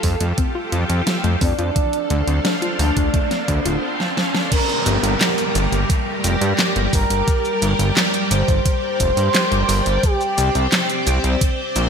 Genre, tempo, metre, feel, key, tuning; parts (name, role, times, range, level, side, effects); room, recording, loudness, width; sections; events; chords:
synthwave; 87 BPM; 4/4; straight; G minor; A4 = 440 Hz
expressive synth lead; melody; 0.0-11.3 s; D4 to C5; -24 LUFS; equal; wide subtle chorus, ping-pong delay
string machine, full ensemble; sustained chords; 0.0-11.9 s; G3 to F5; -23 LUFS; equal; ensemble chorus, sidechain pumping
warbly dusty pluck; arpeggios; 0.0-3.8 s; F3 to F4; -28 LUFS; left 4 dB; chorus, ping-pong delay
fat analog bass; bass; 0.0-11.9 s; D1 to G2; -19 LUFS; equal; sidechain pumping
electronic kick drum; drums; 0.0-11.6 s; -20 LUFS; equal; overdrive, small room ambience
pop drum kit; drums; 0.0-11.9 s; crash cymbal, handclaps, hi-hat, shaker, snare drum; -22 LUFS; right 1 dB; small room ambience
riser and downlifter; sound effects; 1.7-10.0 s; -27 LUFS; equal
light reverb, digital ambience; bright 1980s-style digital production; -16 LUFS; side -6 dB against mid
0.0-4.5 A section; 4.5-11.9 B section
filter sweep on synth arpeggio sound 0.0-4.5; riser 1.7-4.5; drum fill 4.0-4.5
0.0 Fadd9; 1.8 Dm7; 4.5 Gm; 10.0 Csus2